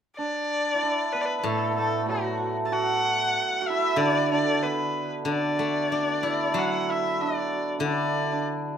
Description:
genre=chinese traditional, Chinese chamber ensemble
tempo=94 BPM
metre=2/4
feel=rubato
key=D gong mode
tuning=A4 = 442 Hz
part: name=rich erhu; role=melody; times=0.2-8.4 s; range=F#4 to A5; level=-27 LUFS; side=left 1 dB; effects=none
part: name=hammered dulcimer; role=second line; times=0.2-8.8 s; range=F#3 to A4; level=-27 LUFS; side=right 3 dB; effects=none
part: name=steel-string zither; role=accompaniment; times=1.4-8.8 s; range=A2 to E4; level=-30 LUFS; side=left 4 dB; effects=none
room=light reverb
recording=close, detailed microphones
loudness=-23 LUFS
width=side -8 dB against mid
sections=0.2-8.8 A section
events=none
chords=none

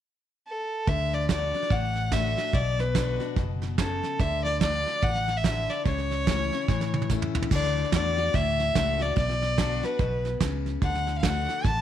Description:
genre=honky-tonk and classic country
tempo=145 BPM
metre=4/4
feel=swing 61% on 8ths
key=D major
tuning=A4 = 440 Hz
part: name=clear fiddle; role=melody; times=0.5-11.8 s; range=A4 to A5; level=-28 LUFS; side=left 1 dB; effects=none
part: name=picked steel-string acoustic guitar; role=accompaniment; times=0.9-11.8 s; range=A2 to F#4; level=-33 LUFS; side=left 11 dB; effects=none
part: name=fingered electric bass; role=bass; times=0.9-11.8 s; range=F#1 to A2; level=-30 LUFS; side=equal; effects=none
part: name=soft brush drum kit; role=drums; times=0.9-11.8 s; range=crash cymbal, hi-hat, kick drum, snare drum, toms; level=-28 LUFS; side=right 3 dB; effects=none
room=light reverb, studio ambience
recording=1960s-style stereo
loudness=-24 LUFS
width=side -10 dB against mid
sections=0.9-7.5 A section; 7.5-11.8 B section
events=drum fill 6.7-7.5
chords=0.0 N.C.; 0.9 D; 2.5 Bm; 4.2 D; 5.9 A/C#; 7.5 D; 9.2 Bm; 10.8 D

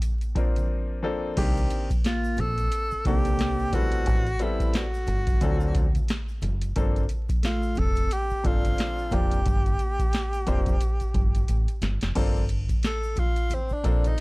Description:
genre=hip hop, jazz-hop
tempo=89 BPM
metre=4/4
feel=swing 58% on 16ths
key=G minor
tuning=A4 = 440 Hz
part: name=booming analog drum machine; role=drums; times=0.0-14.2 s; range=crash cymbal, hi-hat, kick drum, snare drum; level=-25 LUFS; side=equal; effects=vintage 12-bit sampler grit
part: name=congas and tube shaker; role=percussion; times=0.0-14.2 s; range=none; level=-43 LUFS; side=equal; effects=none
part: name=bright upright piano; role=accompaniment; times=0.4-14.1 s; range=Bb2 to C5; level=-30 LUFS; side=left 2 dB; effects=none
part: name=deep dub fingered electric bass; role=bass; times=1.4-14.1 s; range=F1 to D2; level=-27 LUFS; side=equal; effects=none
part: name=mellow electric guitar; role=second line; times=2.0-11.8 s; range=G3 to C4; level=-37 LUFS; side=right 1 dB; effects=lush chorus, tape echo
part: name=breathy tenor saxophone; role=melody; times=2.1-14.2 s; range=C4 to A4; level=-30 LUFS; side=equal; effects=none
room=small room ambience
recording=dry, gritty hardware recording, vinyl crackle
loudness=-23 LUFS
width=side -23 dB against mid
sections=0.0-1.4 A section; 1.4-12.2 B section; 12.2-14.2 C section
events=break 0.7-1.4; drum fill 11.5-12.2; tenor saxophone solo 12.2-14.2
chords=0.0 Gm11 (rootless); 1.4 Cm9; 4.1 Am7; 5.4 D7b13; 6.8 Gm11

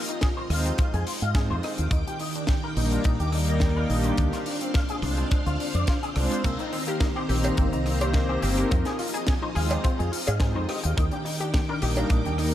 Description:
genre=nu-disco, nu disco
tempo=106 BPM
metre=4/4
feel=swing 54% on 16ths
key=unclear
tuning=A4 = 440 Hz
part: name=string machine, full ensemble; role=sustained chords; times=0.0-12.5 s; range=Eb3 to D6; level=-33 LUFS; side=equal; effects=ensemble chorus, sidechain pumping
part: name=electric guitar with an envelope filter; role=riff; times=0.1-12.4 s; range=Bb3 to F5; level=-34 LUFS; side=left 3 dB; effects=ensemble chorus, vintage 12-bit sampler grit, tape echo
part: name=tight funk drum kit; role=drums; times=0.1-12.5 s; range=crash cymbal, hi-hat, rim click, snare drum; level=-35 LUFS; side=left 2 dB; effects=none
part: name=kick drum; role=drums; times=0.2-12.2 s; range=none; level=-25 LUFS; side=equal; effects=none
part: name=warm analog pad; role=accompaniment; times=0.5-12.5 s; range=Eb3 to C5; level=-31 LUFS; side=equal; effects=chorus, tape echo
part: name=fingered electric bass with an envelope filter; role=bass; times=0.5-12.5 s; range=G1 to Ab2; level=-26 LUFS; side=equal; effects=none
part: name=analog pluck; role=arpeggios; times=6.4-12.5 s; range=Bb3 to Ab4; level=-33 LUFS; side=left 2 dB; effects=chorus, sidechain pumping, tape echo
part: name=cowbell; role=percussion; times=7.4-12.1 s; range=none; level=-36 LUFS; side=right 1 dB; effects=none
room=moderate church reverb, RT60 3.4 s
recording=dreamy mix soaked in reverb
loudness=-23 LUFS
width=side -12 dB against mid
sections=0.0-12.5 A section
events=none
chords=0.0 Fm7; 1.6 Ebmaj7; 4.2 Dm7b5; 6.4 Cm7; 8.7 Fm7; 10.7 Ebmaj7

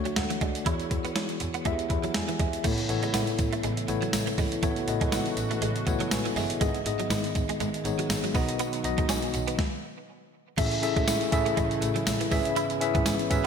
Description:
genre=1980s-style pop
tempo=121 BPM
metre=4/4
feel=swing 55% on 16ths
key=unclear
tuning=A4 = 441 Hz
part: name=tine electric piano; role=accompaniment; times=0.0-13.5 s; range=G#2 to B5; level=-29 LUFS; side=left 2 dB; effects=medium stereo tremolo
part: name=direct-recorded clean electric guitar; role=riff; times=0.1-13.5 s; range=E3 to E4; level=-34 LUFS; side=right 7 dB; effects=ensemble chorus, digital delay
part: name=clean 12-bit digital drum machine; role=drums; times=0.1-13.5 s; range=crash cymbal, hi-hat, kick drum, snare drum, tambourine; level=-30 LUFS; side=equal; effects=gated reverb
part: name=rich double bass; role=bass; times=0.2-13.4 s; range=G1 to A2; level=-34 LUFS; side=equal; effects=none
part: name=warm analog pad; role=sustained chords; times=2.6-13.5 s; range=C#3 to F#4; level=-36 LUFS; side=left 1 dB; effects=chorus
part: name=tambourine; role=percussion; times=2.6-13.4 s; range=none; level=-41 LUFS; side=left 5 dB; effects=none
room=moderate lush hall reverb, RT60 1.9 s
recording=bright 1980s-style digital production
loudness=-25 LUFS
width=side -7 dB against mid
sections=0.0-2.6 A section; 2.6-10.6 B section; 10.6-13.5 C section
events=tine electric piano fill 1.7-2.6; stop 9.6-10.6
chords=0.0 Dmaj7; 0.7 E6; 2.6 Aadd9; 6.6 G#m; 8.3 B; 10.6 Amaj7; 12.3 E6/G#

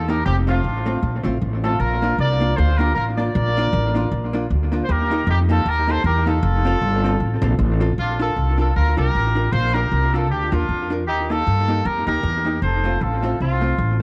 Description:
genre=ska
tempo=155 BPM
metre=4/4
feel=swing 56% on 8ths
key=Bb major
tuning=A4 = 442 Hz
part: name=bright horn section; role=melody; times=0.0-14.0 s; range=C4 to D5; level=-25 LUFS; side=equal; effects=none
part: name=upright bass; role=bass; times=0.0-14.0 s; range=F1 to G2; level=-22 LUFS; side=equal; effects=none
part: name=vintage hollow-body jazz guitar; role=accompaniment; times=0.1-13.7 s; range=A3 to Bb4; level=-28 LUFS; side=equal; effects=tape echo
room=light reverb, small room ambience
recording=none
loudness=-20 LUFS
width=mono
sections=0.0-8.0 A section; 8.0-14.0 B section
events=none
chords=0.3 F; 1.8 Bb; 4.9 Eb; 6.4 F; 8.0 Bb; 11.1 Eb; 12.6 F

